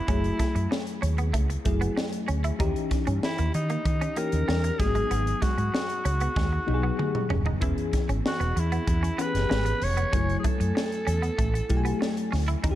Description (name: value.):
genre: polished 1980s jazz-funk pop.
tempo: 96 BPM.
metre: 4/4.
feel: straight.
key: unclear.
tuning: A4 = 440 Hz.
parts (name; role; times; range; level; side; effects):
growling alto saxophone; melody; 0.0-12.3 s; D#4 to C#5; -31 LUFS; equal; none.
bell-like FM electric piano; accompaniment; 0.0-12.8 s; E3 to G#5; -31 LUFS; left 4 dB; analog chorus.
semi-hollow electric guitar; riff; 0.0-12.7 s; G3 to E4; -36 LUFS; right 4 dB; analog chorus.
mellow fretless electric bass; bass; 0.1-12.7 s; D#1 to D#3; -26 LUFS; equal; none.
crisp fusion drum kit; drums; 0.1-12.8 s; hi-hat, kick drum, snare drum, toms; -29 LUFS; equal; none.
room: light reverb, small room ambience.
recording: dark, warm production.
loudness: -24 LUFS.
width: side -13 dB against mid.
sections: 0.0-12.8 A section.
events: drum fill 6.4-7.6.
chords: 0.1 F#m9; 2.6 D#7b9; 4.8 G#m7; 7.6 E6; 10.1 F#m9.